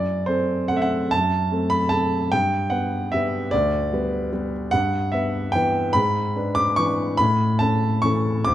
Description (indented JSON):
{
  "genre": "classical, piano waltz",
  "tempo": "147 BPM",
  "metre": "3/4",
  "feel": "uneven beats, rubato",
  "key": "G major",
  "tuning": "A4 = 440 Hz",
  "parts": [
    { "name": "warm grand piano", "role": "solo", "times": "0.0-8.5 s", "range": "D2 to D6", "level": "-19 LUFS", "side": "equal", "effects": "none" }
  ],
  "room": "moderate recital hall reverb, RT60 1.5 s",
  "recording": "dark, warm production",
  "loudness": "-19 LUFS",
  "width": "side -12 dB against mid",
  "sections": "0.0-8.5 A section",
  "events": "none",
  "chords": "0.0 D7/F#; 2.3 G; 4.7 Em/G; 6.0 E7/G#; 7.2 A"
}